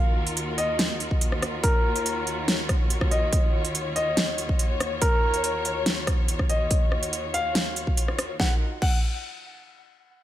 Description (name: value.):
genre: heavy wobble dubstep.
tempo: 142 BPM.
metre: 4/4.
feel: half-time.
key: Eb minor.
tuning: A4 = 438 Hz.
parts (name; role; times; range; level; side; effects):
warm grand piano; melody; 0.0-9.0 s; Bb4 to Gb5; -29 LUFS; left 1 dB; ping-pong delay.
muted studio string section; sustained chords; 0.0-8.6 s; Eb2 to Db5; -30 LUFS; left 1 dB; sidechain pumping.
big-room dance drum kit; drums; 0.3-8.9 s; crash cymbal, hi-hat, rim click, snare drum; -27 LUFS; equal; none.
electronic kick drum; drums; 1.1-8.9 s; none; -23 LUFS; equal; none.
room: light reverb, digital ambience.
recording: none.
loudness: -22 LUFS.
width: side -13 dB against mid.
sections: 0.0-8.4 A section; 8.4-10.1 B section.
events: none.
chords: 0.0 Ebmadd9.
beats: 0.37 0.79 1.21 | 1.64 2.06 2.48 2.90 | 3.33 3.75 4.17 4.59 | 5.02 5.44 5.86 6.28 | 6.71 7.13 7.55 7.97 | 8.40 8.82.